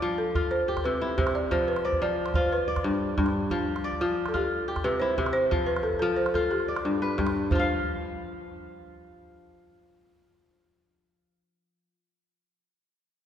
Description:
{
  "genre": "west african traditional, West African string and xylophone music",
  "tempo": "120 BPM (dotted quarters)",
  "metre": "12/8",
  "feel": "straight",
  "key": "unclear",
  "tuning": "A4 = 441 Hz",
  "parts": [
    { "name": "kora", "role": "arpeggios", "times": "0.0-11.9 s", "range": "G2 to F5", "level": "-28 LUFS", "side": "left 2 dB", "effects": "none" },
    { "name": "balafon", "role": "melody", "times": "0.2-11.8 s", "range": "F4 to D5", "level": "-28 LUFS", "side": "right 1 dB", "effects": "none" },
    { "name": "calabash", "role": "percussion", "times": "0.4-7.7 s", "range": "none", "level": "-32 LUFS", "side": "right 1 dB", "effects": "none" }
  ],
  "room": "wet church reverb, RT60 2.9 s",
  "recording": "recorded in a church or concert hall",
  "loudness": "-24 LUFS",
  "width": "side -9 dB against mid",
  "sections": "0.0-7.5 A section; 7.5-11.5 B section",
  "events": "none",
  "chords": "0.0 F; 0.5 C; 1.5 Dm7/F; 2.5 G; 3.5 F5; 4.5 C; 5.5 N.C.; 6.5 G; 7.5 N.C."
}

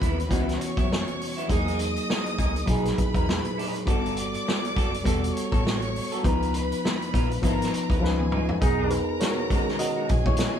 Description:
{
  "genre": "lush 1970s-style soul",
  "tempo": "101 BPM",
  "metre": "4/4",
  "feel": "swing 58% on 16ths",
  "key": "B major",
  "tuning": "A4 = 440 Hz",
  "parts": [
    { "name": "warm studio violin section", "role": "second line", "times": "0.0-10.6 s", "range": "G#4 to D#6", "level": "-32 LUFS", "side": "equal", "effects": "none" },
    { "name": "reed electric piano", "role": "accompaniment", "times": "0.0-10.6 s", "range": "A#2 to D#5", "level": "-28 LUFS", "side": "equal", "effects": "overdrive" },
    { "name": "electric guitar through a small old amp", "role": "riff", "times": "0.0-10.6 s", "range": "F#3 to B4", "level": "-33 LUFS", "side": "right 1 dB", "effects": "phaser" },
    { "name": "vintage muted fingered electric bass", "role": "bass", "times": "0.0-10.5 s", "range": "E1 to F#2", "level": "-30 LUFS", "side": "equal", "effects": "none" },
    { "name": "vintage drum kit", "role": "drums", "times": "0.0-10.5 s", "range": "hi-hat, kick drum, snare drum, toms", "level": "-26 LUFS", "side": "equal", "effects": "none" },
    { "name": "warm trombone section", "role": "stabs", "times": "8.6-9.1 s", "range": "B2 to D#4", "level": "-30 LUFS", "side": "equal", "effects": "none" }
  ],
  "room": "light reverb",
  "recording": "band playing live in one room",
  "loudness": "-23 LUFS",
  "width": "side -9 dB against mid",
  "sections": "0.0-8.6 A section; 8.6-10.6 B section",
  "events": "drum fill 8.0-8.6; reed electric piano solo 8.6-10.6",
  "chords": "0.0 F#7sus4; 1.5 Emaj9#11; 3.9 Gmaj9; 6.2 C#13; 8.0 C#9; 8.6 B6"
}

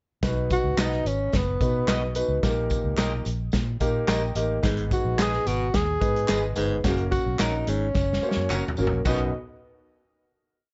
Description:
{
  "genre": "uptempo 1960s-style soul",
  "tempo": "109 BPM",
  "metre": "4/4",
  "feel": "straight",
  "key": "B major",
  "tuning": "A4 = 441 Hz",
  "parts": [
    { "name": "warm concert grand piano", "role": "accompaniment", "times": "0.2-9.3 s", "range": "B1 to G5", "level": "-31 LUFS", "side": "equal", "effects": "none" },
    { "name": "vintage muted fingered electric bass", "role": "bass", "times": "0.2-9.3 s", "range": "F#1 to B2", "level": "-30 LUFS", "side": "equal", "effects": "none" },
    { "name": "natural country drum kit", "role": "drums", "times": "0.2-9.2 s", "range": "crash cymbal, hi-hat, kick drum, snare drum, toms", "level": "-30 LUFS", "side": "equal", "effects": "none" },
    { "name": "tambourine and handclaps", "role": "percussion", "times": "0.2-9.3 s", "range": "none", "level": "-40 LUFS", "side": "equal", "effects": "none" },
    { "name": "breathy tenor saxophone", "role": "melody", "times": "0.5-9.3 s", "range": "B3 to G#4", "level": "-30 LUFS", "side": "equal", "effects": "none" },
    { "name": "electric guitar through a small old amp", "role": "stabs", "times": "0.8-9.2 s", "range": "C#4 to D#5", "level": "-33 LUFS", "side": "equal", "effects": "slapback echo, plate reverb" },
    { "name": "breathy baritone saxophone", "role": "riff", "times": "4.6-9.3 s", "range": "F#2 to B2", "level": "-32 LUFS", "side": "equal", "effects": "none" }
  ],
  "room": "light reverb",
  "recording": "nothing above 7.7 kHz",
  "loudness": "-25 LUFS",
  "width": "mono",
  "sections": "0.2-9.1 verse; 9.1-10.7 final chord",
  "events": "grand piano fill 3.8-4.6; drum fill 7.9-9.1",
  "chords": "0.2 B; 2.4 D#/A#; 4.6 G#m; 6.8 F#; 9.1 B"
}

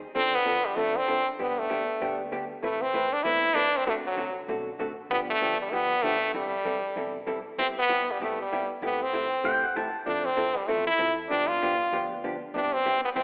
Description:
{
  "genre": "country",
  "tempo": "194 BPM",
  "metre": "4/4",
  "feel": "swing 63% on 8ths",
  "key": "unclear",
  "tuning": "A4 = 440 Hz",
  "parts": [
    { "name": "upright bass", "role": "bass", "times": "0.0-13.2 s", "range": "E1 to A2", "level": "-54 LUFS", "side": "equal", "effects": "none" },
    { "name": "vintage hollow-body jazz guitar", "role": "accompaniment", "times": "0.1-13.2 s", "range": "C3 to B4", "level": "-34 LUFS", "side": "equal", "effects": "none" },
    { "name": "stopped French horn", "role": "melody", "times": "0.2-13.2 s", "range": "F#3 to F4", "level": "-28 LUFS", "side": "equal", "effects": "none" },
    { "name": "pedal steel guitar", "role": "second line", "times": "9.5-10.0 s", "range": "F#5 to A5", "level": "-32 LUFS", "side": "equal", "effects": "none" }
  ],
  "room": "wet scoring stage reverb, RT60 1.9 s",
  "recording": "telephone sound",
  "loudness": "-27 LUFS",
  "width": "mono",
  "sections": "0.0-13.2 A section",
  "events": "none",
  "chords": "0.2 F6; 1.4 G; 2.6 Amadd9; 3.9 D7; 5.1 G7; 6.3 Am7; 7.6 Cmaj7; 8.8 Am7/C; 10.1 Fmaj7; 11.3 G7; 12.5 Cmaj7"
}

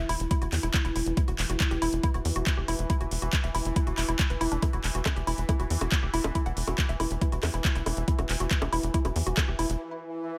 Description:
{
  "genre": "psychedelic trance",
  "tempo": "139 BPM",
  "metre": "4/4",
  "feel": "straight",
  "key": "E minor",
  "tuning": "A4 = 440 Hz",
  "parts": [
    { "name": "bubbling stepped-filter texture", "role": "sustained chords", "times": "0.0-10.4 s", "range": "E3", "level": "-39 LUFS", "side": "equal", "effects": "chorus, built-in reverb, sidechain pumping" },
    { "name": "woody wave-folded pluck", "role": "riff", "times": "0.0-9.7 s", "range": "D4 to F#5", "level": "-36 LUFS", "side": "equal", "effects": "chorus, sidechain pumping, digital delay" },
    { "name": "tight sequencer bass", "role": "bass", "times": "0.0-9.8 s", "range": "E1 to E2", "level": "-33 LUFS", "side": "equal", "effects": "none" },
    { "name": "garage drum kit", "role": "drums", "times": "0.1-9.8 s", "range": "bongos, handclaps, hi-hat", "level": "-34 LUFS", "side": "equal", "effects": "overdrive" },
    { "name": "electronic kick drum", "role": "drums", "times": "0.3-9.5 s", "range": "none", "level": "-29 LUFS", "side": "equal", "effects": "overdrive" }
  ],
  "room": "light reverb",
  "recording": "none",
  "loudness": "-28 LUFS",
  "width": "mono",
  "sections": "0.0-10.4 A section",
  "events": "break 9.8-10.4",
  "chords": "0.0 E5"
}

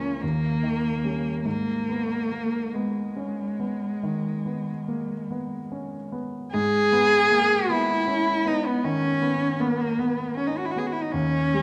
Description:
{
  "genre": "classical, romantic duo for cello and grand piano",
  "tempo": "46-53 BPM (dotted quarters)",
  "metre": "12/8",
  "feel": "rubato",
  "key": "G# minor",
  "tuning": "A4 = 440 Hz",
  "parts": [
    { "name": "rich cello", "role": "melody", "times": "0.0-11.6 s", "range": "G#3 to G#4", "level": "-26 LUFS", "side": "equal", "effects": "none" },
    { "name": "clear grand piano", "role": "accompaniment", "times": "0.0-11.6 s", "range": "C#2 to C#4", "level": "-31 LUFS", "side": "equal", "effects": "none" }
  ],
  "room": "moderate concert hall reverb, RT60 1.9 s",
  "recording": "none",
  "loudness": "-25 LUFS",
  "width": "mono",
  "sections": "0.0-6.5 A section; 6.5-11.6 A section",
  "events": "none",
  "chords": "0.2 D#7; 1.4 G#m"
}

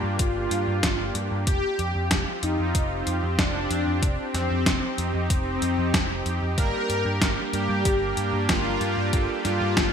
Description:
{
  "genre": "synthwave",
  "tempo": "94 BPM",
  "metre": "4/4",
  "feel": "straight",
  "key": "G minor",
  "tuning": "A4 = 440 Hz",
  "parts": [
    { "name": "soft supersaw", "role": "melody", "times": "0.0-9.9 s", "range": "C4 to Bb4", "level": "-28 LUFS", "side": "left 1 dB", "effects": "analog chorus, vintage 12-bit sampler grit, ping-pong delay" },
    { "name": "lush unison pad", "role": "sustained chords", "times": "0.0-9.9 s", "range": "Bb3 to G4", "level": "-31 LUFS", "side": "right 1 dB", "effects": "chorus, sidechain pumping" },
    { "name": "vintage muted picked electric bass", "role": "bass", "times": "0.0-9.9 s", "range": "F1 to G2", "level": "-28 LUFS", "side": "equal", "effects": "sidechain pumping" },
    { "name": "detuned 8-bit digital drum machine", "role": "drums", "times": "0.2-9.9 s", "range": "hi-hat, snare drum", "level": "-28 LUFS", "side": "equal", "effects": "gated reverb" },
    { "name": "electronic kick drum", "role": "drums", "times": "0.2-9.9 s", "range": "none", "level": "-26 LUFS", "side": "equal", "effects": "overdrive" },
    { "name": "analog synth brass", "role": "stabs", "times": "6.6-9.9 s", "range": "G3 to Bb4", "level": "-30 LUFS", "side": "right 4 dB", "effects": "chorus" }
  ],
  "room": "moderate lush hall reverb, RT60 2.5 s",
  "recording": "bright 1980s-style digital production",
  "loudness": "-22 LUFS",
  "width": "side -7 dB against mid",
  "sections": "0.0-9.9 A section",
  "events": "none",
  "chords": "0.0 Gm; 1.5 Fsus2; 6.6 Gm"
}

